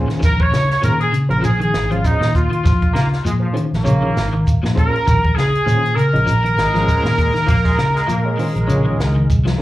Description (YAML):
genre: afrobeat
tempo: 99 BPM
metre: 4/4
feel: swing 56% on 16ths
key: Bb minor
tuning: A4 = 440 Hz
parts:
  - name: overdriven reed electric piano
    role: accompaniment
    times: 0.0-9.6 s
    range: Db4 to Ab5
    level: -26 LUFS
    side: right 1 dB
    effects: fast tremolo, slapback echo
  - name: fingered electric bass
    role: bass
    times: 0.0-9.6 s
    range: Ab1 to Bb2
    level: -18 LUFS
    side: equal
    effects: none
  - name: electric guitar at the edge of break-up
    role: arpeggios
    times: 0.1-9.6 s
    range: Db3 to F3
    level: -21 LUFS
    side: left 2 dB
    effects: ensemble chorus
  - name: compact cocktail drum kit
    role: drums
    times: 0.1-9.6 s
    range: hi-hat, kick drum, snare drum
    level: -20 LUFS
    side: equal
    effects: none
  - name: clear horn section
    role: melody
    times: 0.2-9.3 s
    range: Eb4 to Db5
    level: -20 LUFS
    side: equal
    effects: slapback echo
  - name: warm trumpet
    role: second line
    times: 0.2-9.3 s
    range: Eb4 to Db5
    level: -26 LUFS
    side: right 3 dB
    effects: slapback echo
  - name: shekere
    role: percussion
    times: 0.2-9.5 s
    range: none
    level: -22 LUFS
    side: right 1 dB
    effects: none
  - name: brilliant trombone section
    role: second line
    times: 2.9-9.5 s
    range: F3 to Bb3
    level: -26 LUFS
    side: right 1 dB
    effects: slapback echo
room: light reverb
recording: live gig heard through the venue's PA, club reverb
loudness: -14 LUFS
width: side -16 dB against mid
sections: 0.0-9.6 A section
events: reed electric piano fill 0.0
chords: 0.0 Bbm7